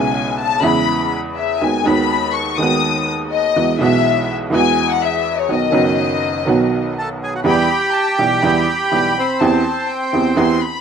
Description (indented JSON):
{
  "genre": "tango",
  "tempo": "123 BPM",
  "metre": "4/4",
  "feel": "rubato",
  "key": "E major, E minor from 7.5 s",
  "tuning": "A4 = 440 Hz",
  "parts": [
    { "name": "warm chamber violin section", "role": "second line", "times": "0.0-10.8 s", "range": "C#5 to D#6", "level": "-19 LUFS", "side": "left 11 dB", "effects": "none" },
    { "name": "bright upright piano", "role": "accompaniment", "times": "0.0-10.6 s", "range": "F#1 to G4", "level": "-17 LUFS", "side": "right 4 dB", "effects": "none" },
    { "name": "bandoneon", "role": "melody", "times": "7.0-10.6 s", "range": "C4 to A5", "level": "-18 LUFS", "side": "right 3 dB", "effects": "none" }
  ],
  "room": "small room reverb",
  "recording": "dry, close 1970s-style studio recording",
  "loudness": "-14 LUFS",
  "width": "side -7 dB against mid",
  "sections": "0.0-7.5 A section; 7.5-10.8 B section",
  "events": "violin section solo 0.0-7.5",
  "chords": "0.0 E6; 1.6 G#m7/D#; 3.6 Eadd9; 5.5 B; 7.5 Em; 9.4 Cmaj7/E"
}